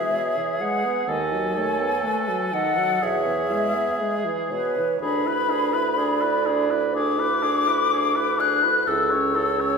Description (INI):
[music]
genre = classical, slow romantic movement for wind quintet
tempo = 62 BPM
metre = 4/4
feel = rubato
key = unclear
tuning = A4 = 440 Hz
[part]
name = hollow concert flute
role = melody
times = 0.0-9.8 s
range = B4 to F#6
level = -23 LUFS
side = left 4 dB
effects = none
[part]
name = warm oboe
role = second line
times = 0.0-9.8 s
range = G#4 to C#5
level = -29 LUFS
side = equal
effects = none
[part]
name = clear French horn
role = accompaniment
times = 0.0-9.8 s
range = B2 to E4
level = -29 LUFS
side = right 1 dB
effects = none
[part]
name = warm clarinet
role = accompaniment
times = 0.0-9.8 s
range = A4 to D#5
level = -28 LUFS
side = right 8 dB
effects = none
[part]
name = mellow bassoon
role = bass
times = 1.1-9.8 s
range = C#2 to E2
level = -28 LUFS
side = right 3 dB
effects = none
[sound]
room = wet recital hall reverb, RT60 1.6 s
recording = recorded in a church or concert hall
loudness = -20 LUFS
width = side -5 dB against mid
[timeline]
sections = 0.0-9.8 A section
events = none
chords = 0.0 E; 1.1 B7/D#; 3.0 E; 5.0 E7/D; 8.9 A/C#